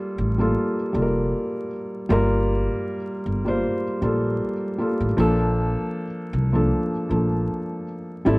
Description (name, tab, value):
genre	hip hop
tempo	78 BPM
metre	4/4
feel	swing 56% on 16ths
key	unclear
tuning	A4 = 437 Hz
part	felt-muted upright piano	accompaniment	0.0-8.4 s	F3 to C5	-22 LUFS	equal	low-pass filter
part	upright bass	bass	0.2-8.4 s	F1 to C2	-24 LUFS	equal	none
room	moderate studio reverb, RT60 0.6 s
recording	dark, warm production, vinyl crackle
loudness	-21 LUFS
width	side -25 dB against mid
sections	0.0-8.4 A section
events	none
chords	0.0 Gm9; 5.2 Bbmaj7